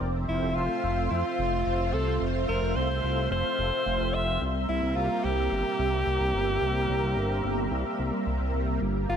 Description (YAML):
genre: synthwave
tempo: 109 BPM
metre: 4/4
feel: straight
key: unclear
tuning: A4 = 440 Hz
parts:
  - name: analog string pad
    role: sustained chords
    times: 0.0-9.2 s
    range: G3 to E5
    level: -30 LUFS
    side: right 1 dB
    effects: ensemble chorus
  - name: fat analog bass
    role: bass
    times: 0.0-9.2 s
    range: F1 to F2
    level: -29 LUFS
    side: equal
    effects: tube saturation
  - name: bright alto saxophone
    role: melody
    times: 0.3-9.2 s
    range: E4 to E5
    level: -29 LUFS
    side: equal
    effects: ping-pong delay
room: light reverb, small room reverb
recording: none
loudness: -25 LUFS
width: side -8 dB against mid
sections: 0.0-9.2 A section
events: none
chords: 0.0 Fmaj7; 4.4 C7